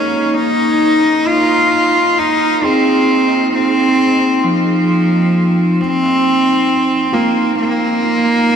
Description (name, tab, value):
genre	ambient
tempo	66 BPM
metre	4/4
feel	straight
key	unclear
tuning	A4 = 440 Hz
part	rich cello	melody	0.0-8.6 s	F3 to F4	-12 LUFS	equal	shimmer reverb, tape echo
part	felt-muted upright piano	arpeggios	0.0-8.6 s	F4 to Ab4	-26 LUFS	left 4 dB	shimmer reverb, tape echo
part	analog drone	drone	0.0-8.6 s	Bb3 to Eb4	-19 LUFS	equal	chorus
room	wet huge ambient reverb, RT60 7.9 s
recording	none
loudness	-11 LUFS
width	side -7 dB against mid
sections	0.0-8.6 A section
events	none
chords	0.0 Fm11; 2.2 Fm7; 5.8 Bb5